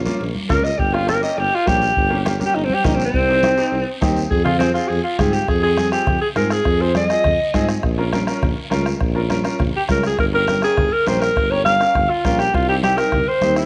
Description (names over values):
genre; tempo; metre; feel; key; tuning
latin, cumbia; 204 BPM; 4/4; straight; F minor; A4 = 440 Hz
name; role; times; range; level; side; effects
mellow tuba; bass; 0.0-13.6 s; G1 to Ab2; -25 LUFS; equal; none
clear upright piano; accompaniment; 0.1-13.6 s; Bb3 to Bb4; -29 LUFS; equal; none
congas; percussion; 0.1-13.6 s; none; -29 LUFS; equal; none
guiro; percussion; 0.1-13.7 s; none; -37 LUFS; equal; none
clear alto saxophone; melody; 0.5-7.7, 9.8-13.7 s; C4 to F5; -20 LUFS; equal; none
bombo; percussion; 0.5-13.7 s; none; -27 LUFS; equal; none
room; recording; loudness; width
moderate echo chamber reverb, RT60 1.8 s, small room ambience; none; -18 LUFS; mono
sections
0.0-5.5 A section; 5.5-13.7 B section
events
alto saxophone solo 0.0-5.5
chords
0.0 Bbm; 0.8 Gdim; 3.1 Cm; 4.3 Fm; 5.5 Fm7; 7.8 Bbm; 10.2 Gdim; 12.5 Cm